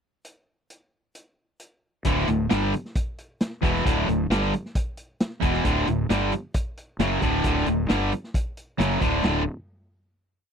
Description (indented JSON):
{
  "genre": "classic rock",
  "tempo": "134 BPM",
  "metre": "4/4",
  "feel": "straight",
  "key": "D major",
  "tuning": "A4 = 440 Hz",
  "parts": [
    { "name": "vintage drum kit", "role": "drums", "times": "0.2-9.3 s", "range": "hi-hat, kick drum, snare drum, toms", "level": "-26 LUFS", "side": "equal", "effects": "none" },
    { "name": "distorted electric guitar", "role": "riff", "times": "2.0-9.4 s", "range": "D2 to G3", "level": "-23 LUFS", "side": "equal", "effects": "overdrive" },
    { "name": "fuzz fingered electric bass", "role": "bass", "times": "2.1-9.4 s", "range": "D1 to G1", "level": "-28 LUFS", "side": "equal", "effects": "overdrive" }
  ],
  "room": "little or no reverb",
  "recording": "dry, close 1970s-style studio recording",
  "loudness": "-22 LUFS",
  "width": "side -7 dB against mid",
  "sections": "0.3-2.1 pickup bar; 2.1-9.2 riff; 9.2-10.5 final chord",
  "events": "none",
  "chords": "0.3 N.C.; 2.1 D; 9.2 D5",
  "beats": "| 0.26 0.71 1.16 1.61 | 2.06 2.51 2.96 3.41 | 3.86 4.30 4.75 5.20 | 5.65 6.10 6.55 7.00 | 7.44 7.89 8.34 8.79 | 9.24"
}